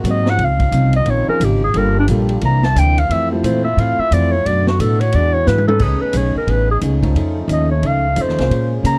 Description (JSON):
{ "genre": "jazz, big band swing", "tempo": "177 BPM", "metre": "4/4", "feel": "swing 62% on 8ths", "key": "unclear", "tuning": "A4 = 439 Hz", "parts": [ { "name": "warm clarinet", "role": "melody", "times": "0.0-9.0 s", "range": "D4 to Bb5", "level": "-21 LUFS", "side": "equal", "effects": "none" }, { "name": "clear trombone section", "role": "sustained chords", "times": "0.0-9.0 s", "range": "C3 to G#4", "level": "-30 LUFS", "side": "equal", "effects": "none" }, { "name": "upright bass", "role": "bass", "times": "0.0-9.0 s", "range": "G1 to Db3", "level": "-19 LUFS", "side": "equal", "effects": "none" }, { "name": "swinging big-band drum kit", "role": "drums", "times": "0.0-8.9 s", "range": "crash cymbal, hi-hat, kick drum, ride cymbal, snare drum, toms", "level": "-28 LUFS", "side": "equal", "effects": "none" }, { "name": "fingerpicked plugged-in steel-string acoustic guitar", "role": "accompaniment", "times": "0.1-9.0 s", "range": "F2 to C5", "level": "-26 LUFS", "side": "equal", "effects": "none" }, { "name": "warm grand piano", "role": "accompaniment", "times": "0.3-3.4, 5.7-8.8 s", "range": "F3 to C5", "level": "-26 LUFS", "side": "equal", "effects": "none" } ], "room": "little or no reverb", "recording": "dry, close 1970s-style studio recording", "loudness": "-16 LUFS", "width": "mono", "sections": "0.0-5.8 A section; 5.8-9.0 A section", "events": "clarinet solo 0.0-9.0; drum fill 5.5-5.8", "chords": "0.4 Dbmaj9; 1.7 Gm9; 2.4 C9; 3.1 Fmaj7; 4.5 Bm7; 5.1 E9; 5.8 Amaj9#11; 7.2 F7b13" }